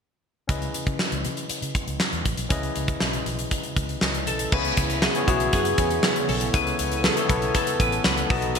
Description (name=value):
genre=1980s-style pop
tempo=119 BPM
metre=4/4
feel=straight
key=C# minor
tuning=A4 = 439 Hz
part: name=barky tine electric piano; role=accompaniment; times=0.5-8.6 s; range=B2 to D#5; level=-28 LUFS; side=left 5 dB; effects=medium stereo tremolo
part: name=vintage muted fingered electric bass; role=bass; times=0.5-8.6 s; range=A1 to C#3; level=-30 LUFS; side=right 1 dB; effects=none
part: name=big rock drum kit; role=drums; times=0.5-8.6 s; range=crash cymbal, hi-hat, kick drum, snare drum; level=-24 LUFS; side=equal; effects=gated reverb
part: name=lightly driven lead guitar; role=melody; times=4.3-8.6 s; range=F#4 to B4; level=-27 LUFS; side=equal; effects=digital delay
part: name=warm analog pad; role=sustained chords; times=4.9-8.6 s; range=C#3 to A4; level=-34 LUFS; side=right 2 dB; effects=none
part: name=direct-recorded clean electric guitar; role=riff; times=4.5-8.6 s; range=E3 to A4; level=-34 LUFS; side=right 7 dB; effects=ensemble chorus, digital delay
room=moderate plate reverb, RT60 1.8 s, studio reverb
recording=bright 1980s-style digital production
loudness=-21 LUFS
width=side -6 dB against mid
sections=0.5-4.5 A section; 4.5-8.6 B section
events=none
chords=0.5 C#m9; 4.5 C#m7; 6.5 Aadd9